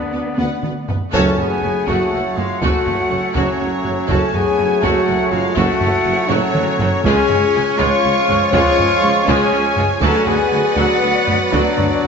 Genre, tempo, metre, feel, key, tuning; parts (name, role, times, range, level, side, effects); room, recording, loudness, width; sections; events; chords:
cinematic, epic orchestral film score; 81 BPM (dotted quarters); 6/8; straight; F# harmonic minor; A4 = 440 Hz
silver concert flute; second line; 0.0-12.1 s; C#5 to C#6; -24 LUFS; equal
dark woodwind section; sustained chords; 0.0-12.1 s; F#3 to D5; -26 LUFS; right 1 dB
mellow French horn section; sustained chords; 0.0-12.1 s; C#4 to C#5; -20 LUFS; left 5 dB
warm trombone section; sustained chords; 0.0-12.1 s; D3 to B3; -27 LUFS; right 4 dB
mellow trumpet section; stabs; 0.0-12.1 s; F#3 to E#4; -22 LUFS; equal
dark symphonic cello section; bass; 0.0-12.1 s; C#2 to B3; -27 LUFS; right 3 dB
rich symphonic violin section; melody; 0.1-12.1 s; C#5 to C#6; -27 LUFS; left 3 dB
rich symphonic violin section; second line; 0.1-12.1 s; B4 to F#5; -27 LUFS; left 2 dB
clear symphonic viola section; accompaniment; 0.1-12.1 s; F#3 to F#4; -24 LUFS; right 2 dB
mellow tuba; bass; 0.1-12.1 s; F#1 to D2; -26 LUFS; right 4 dB
warm symphonic double bass section; bass; 0.1-12.1 s; F#1 to D2; -28 LUFS; right 3 dB
taiko ensemble; drums; 0.4-12.0 s; -24 LUFS; equal
timpani; percussion; 1.1-1.8, 7.0-7.8 s; F#2 to C#3; -28 LUFS; equal
wet scoring stage reverb, RT60 2.0 s; nothing above 7.8 kHz; -14 LUFS; side -6 dB against mid
0.0-1.1 A section; 1.1-12.1 B section
drum fill 0.4-1.1, 6.3-7.0; band accent 1.1-1.6
0.0 Bm/D; 1.1 F#m; 7.0 C#; 10.0 Bm/D